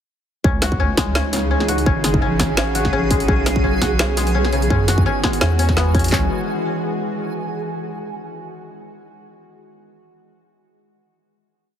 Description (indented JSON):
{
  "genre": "half-time drum and bass",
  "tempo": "169 BPM",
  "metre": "4/4",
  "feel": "swing 55% on 16ths, half-time",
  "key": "C# minor",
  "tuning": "A4 = 440 Hz",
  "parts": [
    { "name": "bowed-like drone", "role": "sustained chords", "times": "0.9-6.3 s", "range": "C#3 to G#4", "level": "-25 LUFS", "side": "right 1 dB", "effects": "built-in reverb, sidechain pumping" },
    { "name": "koto", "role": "arpeggios", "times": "0.4-6.3 s", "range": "C#3 to F#4", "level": "-24 LUFS", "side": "left 4 dB", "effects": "tape echo" },
    { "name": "deep soft wobble bass", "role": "bass", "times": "0.4-6.3 s", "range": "G#1 to F#2", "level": "-20 LUFS", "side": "equal", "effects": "chorus" },
    { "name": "industrial drum kit", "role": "drums", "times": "0.4-6.2 s", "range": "handclaps, kick drum", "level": "-21 LUFS", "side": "equal", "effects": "distortion" },
    { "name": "backwards swelling texture", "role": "texture", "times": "1.4-6.1 s", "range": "G#4", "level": "-28 LUFS", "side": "right 2 dB", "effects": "built-in reverb" },
    { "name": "drum and bass drum kit", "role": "drums", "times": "0.6-6.1 s", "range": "hi-hat, snare drum", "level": "-22 LUFS", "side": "equal", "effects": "overdrive" }
  ],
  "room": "light reverb",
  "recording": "heavily compressed radio sound",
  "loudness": "-16 LUFS",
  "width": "side -9 dB against mid",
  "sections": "0.4-6.1 drop; 6.1-7.5 final chord",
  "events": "drop 0.4-6.1",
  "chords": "0.4 C#madd9; 1.9 F#m; 3.3 B6; 4.7 Eadd9; 6.1 C#madd9"
}